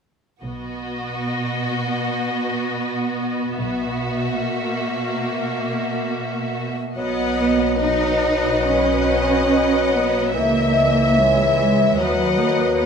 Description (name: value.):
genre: classical, slow romantic movement for symphony orchestra.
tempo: 60-80 BPM.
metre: 4/4.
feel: rubato.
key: B major.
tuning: A4 = 436 Hz.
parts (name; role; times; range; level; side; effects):
clear chamber violin section; melody; 0.4-12.9 s; D#5 to F#5; -29 LUFS; left 3 dB; none.
rich studio violin section; second line; 0.4-12.9 s; F#4 to E5; -27 LUFS; left 3 dB; none.
rich symphonic viola section; accompaniment; 0.4-12.9 s; A#3 to E5; -26 LUFS; equal; none.
clear chamber double bass section; bass; 0.4-12.9 s; B1 to D#2; -27 LUFS; right 3 dB; none.
rich studio cello section; bass; 0.4-12.9 s; B2 to D#4; -23 LUFS; right 3 dB; none.
mellow large flute ensemble; second line; 7.0-12.9 s; B4 to D#5; -27 LUFS; right 1 dB; none.
warm bassoon; accompaniment; 7.0-12.9 s; E3 to F#3; -24 LUFS; left 2 dB; none.
mellow French horn section; sustained chords; 7.0-12.9 s; F#4 to E5; -23 LUFS; left 5 dB; none.
room: wet recital hall reverb, RT60 1.8 s.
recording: minimal, uncompressed stereo recording.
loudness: -18 LUFS.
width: side -6 dB against mid.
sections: 0.4-7.0 A section; 7.0-12.9 B section.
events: none.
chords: 0.4 B; 3.6 F#7/B; 7.0 B; 10.3 A#dim/C#; 12.0 B/D#.